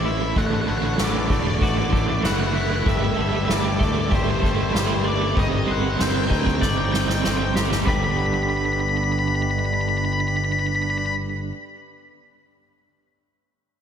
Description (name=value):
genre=post-rock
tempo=96 BPM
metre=4/4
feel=straight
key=G major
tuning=A4 = 440 Hz
part: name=octave-fuzz lead guitar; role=melody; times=0.0-11.1 s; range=C5 to B5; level=-27 LUFS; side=left 2 dB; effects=distortion, slapback echo, tape echo
part: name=hand-pumped harmonium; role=sustained chords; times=0.0-11.1 s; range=G3 to C5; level=-33 LUFS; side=equal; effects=none
part: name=twelve-string electric guitar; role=arpeggios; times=0.0-11.6 s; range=A2 to D5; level=-29 LUFS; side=left 4 dB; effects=spring reverb, tape echo
part: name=crunchy overdriven guitar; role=riff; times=0.0-11.6 s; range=G2 to C4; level=-27 LUFS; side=right 10 dB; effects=tremolo
part: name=modern bright fingered electric bass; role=bass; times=0.0-11.5 s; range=E1 to D2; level=-26 LUFS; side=equal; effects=none
part: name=soft-mallet drum kit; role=drums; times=0.1-8.0 s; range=kick drum, ride cymbal, snare drum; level=-23 LUFS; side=left 1 dB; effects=none
room=moderate lush hall reverb, RT60 2.6 s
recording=big arena sound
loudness=-19 LUFS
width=side -8 dB against mid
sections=0.0-7.9 A section; 7.9-10.4 B section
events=drum fill 6.6-7.9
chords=0.4 Dadd9; 2.9 Gsus2; 5.4 Cmadd9/G; 7.9 G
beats=| 0.37 0.99 1.62 2.25 | 2.87 3.50 4.12 4.75 | 5.37 6.00 6.62 7.25 | 7.87 8.50 9.12 9.75